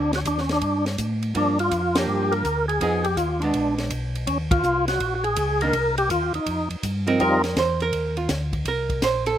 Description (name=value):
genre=soul jazz organ trio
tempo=164 BPM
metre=4/4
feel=swing 66% on 8ths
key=unclear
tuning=A4 = 441 Hz
part: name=percussive tonewheel organ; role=melody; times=0.0-7.4 s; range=G3 to Bb4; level=-22 LUFS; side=equal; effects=slow rotary speaker, overdrive, chorus vibrato, slapback echo
part: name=mellow tonewheel organ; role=bass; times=0.0-9.4 s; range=Bb1 to A2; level=-27 LUFS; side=equal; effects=chorus vibrato, slow rotary speaker
part: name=compact cocktail drum kit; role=drums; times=0.1-9.3 s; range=hi-hat, kick drum, ride cymbal, snare drum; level=-30 LUFS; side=equal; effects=none
part: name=archtop guitar, miked and amplified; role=accompaniment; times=1.3-9.4 s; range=Eb3 to C5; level=-25 LUFS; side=right 4 dB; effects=slapback echo
room=little or no reverb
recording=recorded outdoors, with no room sound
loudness=-20 LUFS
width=side -10 dB against mid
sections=0.0-7.2 A section; 7.2-9.4 B section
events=band accent 1.9, 4.5; hollow-body jazz guitar solo 7.2-9.4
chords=0.0 D5; 1.3 Gm7; 2.8 Fm7b5; 3.5 Bb7b9; 4.3 Eb9sus4; 5.7 Cm; 6.5 Fsus2; 7.2 F7sus4; 8.7 Bbsus2